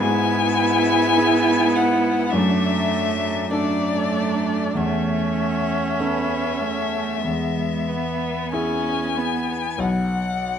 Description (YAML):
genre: classical, slow romantic movement for piano quartet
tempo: 46-52 BPM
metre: 4/4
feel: rubato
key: unclear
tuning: A4 = 440 Hz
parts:
  - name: rich violin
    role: melody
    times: 0.0-10.6 s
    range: D5 to G#5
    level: -25 LUFS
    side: left 7 dB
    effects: none
  - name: rich cello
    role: second line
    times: 0.0-9.8 s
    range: G#3 to C#4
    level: -24 LUFS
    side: right 4 dB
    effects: none
  - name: clear grand piano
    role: accompaniment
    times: 0.0-10.6 s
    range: B1 to A4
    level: -24 LUFS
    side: left 1 dB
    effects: none
  - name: rich viola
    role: accompaniment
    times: 0.0-9.6 s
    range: B3 to E4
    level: -25 LUFS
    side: right 2 dB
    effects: none
room: wet recital hall reverb, RT60 1.2 s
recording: none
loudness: -19 LUFS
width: side -8 dB against mid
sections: 0.0-10.6 A section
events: none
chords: 0.0 E/G#; 2.3 D/F#; 4.8 A/E; 7.2 E; 9.8 G#m7/B (rootless)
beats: | 0.01 1.18 2.33 3.52 | 4.76 6.00 7.25 8.53 | 9.79